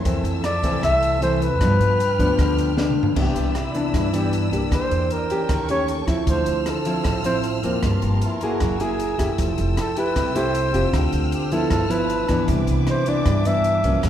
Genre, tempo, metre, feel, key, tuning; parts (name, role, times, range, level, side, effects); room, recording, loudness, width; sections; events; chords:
bossa nova; 154 BPM; 4/4; straight; C major; A4 = 443 Hz
nylon-string guitar; accompaniment; 0.0-14.1 s; F2 to Ab4; -22 LUFS; left 1 dB
warm studio string section; sustained chords; 0.0-14.1 s; A4 to F6; -32 LUFS; equal
upright bass; bass; 0.0-14.1 s; F1 to G2; -25 LUFS; equal
compact cocktail drum kit; drums; 0.1-14.1 s; crash cymbal, hi-hat, kick drum, rim click, snare drum, toms; -26 LUFS; equal
mellow flugelhorn; melody; 0.5-14.0 s; E4 to E5; -24 LUFS; equal
moderate scoring stage reverb, RT60 1.6 s; recorded in a church or concert hall; -18 LUFS; side -10 dB against mid
0.0-3.2 A section; 3.2-14.1 B section
drum fill 2.8-3.2; flugelhorn solo 3.2-14.1
0.1 Fmaj7; 1.6 G7; 3.2 Cmaj9; 4.7 Em7b5; 5.5 Eb7#11; 6.3 Dm9; 7.8 Gm11; 8.6 F#9; 9.4 Fmaj9; 10.9 Dm11; 11.7 G13; 12.5 Cmaj9